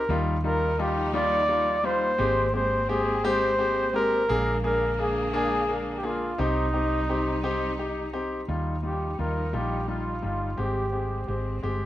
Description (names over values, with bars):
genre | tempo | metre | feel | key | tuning
six-eight pop ballad | 57 BPM (dotted quarters) | 6/8 | straight | Eb major | A4 = 439 Hz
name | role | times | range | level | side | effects
warm flugelhorn | melody | 0.0-11.4 s | Eb4 to D5 | -26 LUFS | equal | plate reverb
hollow-body short-scale fingered electric bass | bass | 0.0-11.9 s | G1 to Eb2 | -31 LUFS | right 1 dB | none
clear grand piano | accompaniment | 0.1-11.9 s | G3 to Ab4 | -28 LUFS | left 2 dB | plate reverb
warm studio string section | sustained chords | 0.1-11.9 s | C3 to Eb4 | -36 LUFS | equal | none
room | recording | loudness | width
wet small room reverb, RT60 0.6 s | rough home demo mix | -24 LUFS | side -14 dB against mid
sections
0.0-8.5 A section; 8.5-11.9 B section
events
none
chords
0.1 Ebadd9; 2.2 Abmaj7; 4.3 Bb7; 6.4 Cm; 8.5 Ebadd9; 10.6 Abmaj7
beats
| 0.09 1.14 | 2.19 3.24 | 4.29 5.34 | 6.39 7.44 | 8.49 9.54 | 10.59 11.64